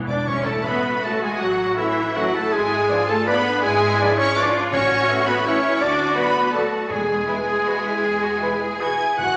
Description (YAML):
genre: classical, orchestral ballroom waltz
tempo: 162 BPM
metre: 3/4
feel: uneven beats, rubato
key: A major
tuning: A4 = 440 Hz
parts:
  - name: clear studio viola section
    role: accompaniment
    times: 0.0-9.4 s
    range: E3 to G#4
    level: -28 LUFS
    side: equal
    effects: none
  - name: rich studio cello section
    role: bass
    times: 0.0-9.2 s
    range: D4 to G#4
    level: -30 LUFS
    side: equal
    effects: none
  - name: rich studio double bass section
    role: bass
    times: 0.0-9.4 s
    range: G#1 to E2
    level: -36 LUFS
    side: equal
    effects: none
  - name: timpani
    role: percussion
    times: 0.0-0.8, 4.7-9.4 s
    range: E2 to A2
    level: -36 LUFS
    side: equal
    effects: none
  - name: rich studio violin section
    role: melody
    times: 0.1-9.4 s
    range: E5 to G#6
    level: -30 LUFS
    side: equal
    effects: none
  - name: mellow hollow concert flute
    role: second line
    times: 0.1-9.4 s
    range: E4 to G#5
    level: -29 LUFS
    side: equal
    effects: none
  - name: rich studio violin section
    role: second line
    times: 0.1-9.4 s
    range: E4 to G#5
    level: -32 LUFS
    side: equal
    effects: none
  - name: warm clarinet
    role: second line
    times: 0.1-9.4 s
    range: E4 to G#5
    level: -30 LUFS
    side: equal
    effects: none
  - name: warm oboe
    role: second line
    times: 0.1-9.4 s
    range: E4 to G#5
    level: -28 LUFS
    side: equal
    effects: none
  - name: mellow French horn section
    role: sustained chords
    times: 0.6-8.9 s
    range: G#3 to B4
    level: -38 LUFS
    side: equal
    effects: none
  - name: warm trombone section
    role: sustained chords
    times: 0.6-9.0 s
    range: G#2 to F#3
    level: -37 LUFS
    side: equal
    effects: none
  - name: mellow trumpet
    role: stabs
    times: 0.6-9.0 s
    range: B4 to E5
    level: -32 LUFS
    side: equal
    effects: none
room: wet recital hall reverb, RT60 1.6 s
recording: none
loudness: -20 LUFS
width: mono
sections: 0.3-9.4 A section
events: timpani fill 0.0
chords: 0.3 A; 2.5 G#dim7; 4.7 A; 5.8 D; 6.9 E